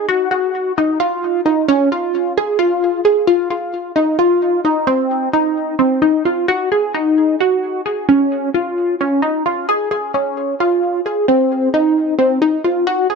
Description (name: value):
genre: progressive instrumental, progressive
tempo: 262 BPM (eighths)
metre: 7/8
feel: straight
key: Ab mixolydian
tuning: A4 = 441 Hz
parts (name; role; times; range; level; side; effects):
- tight sequenced synth; solo; 0.0-13.2 s; C4 to Ab4; -14 LUFS; equal; chorus, phaser, ping-pong delay
room: moderate studio reverb, RT60 0.7 s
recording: none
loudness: -14 LUFS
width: side -4 dB against mid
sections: 0.0-4.9 A section; 4.9-13.2 B section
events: none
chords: none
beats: | 0.09 0.32 0.55 0.78 1.00 1.23 1.46 | 1.69 1.92 2.15 2.38 2.60 2.83 3.06 | 3.29 3.52 3.75 3.98 4.21 4.43 4.66 | 4.89 5.12 5.35 5.58 5.81 6.04 6.26 | 6.49 6.72 6.95 7.18 7.41 7.64 7.87 | 8.09 8.32 8.55 8.78 9.01 9.23 9.46 | 9.69 9.92 10.14 10.37 10.60 10.83 11.05 | 11.28 11.51 11.74 11.96 12.19 12.42 12.65 | 12.87 13.10